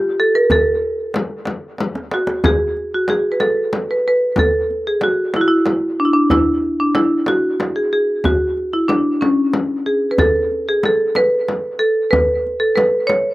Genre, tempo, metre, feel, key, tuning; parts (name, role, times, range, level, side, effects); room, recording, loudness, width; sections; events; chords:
Persian modal ensemble; 62 BPM (dotted quarters); 6/8; straight; A dastgah mahur; A4 = 440 Hz
marimba with medium hard mallets; melody; 0.0-13.3 s; C#4 to C#5; -15 LUFS; equal
frame drum; percussion; 0.5-13.2 s; -24 LUFS; left 2 dB
tombak; percussion; 0.5-13.2 s; -22 LUFS; equal
little or no reverb; recorded outdoors, with no room sound; -15 LUFS; side -18 dB against mid
0.0-2.4 A section; 2.4-13.3 B section
drum fill 1.8-2.4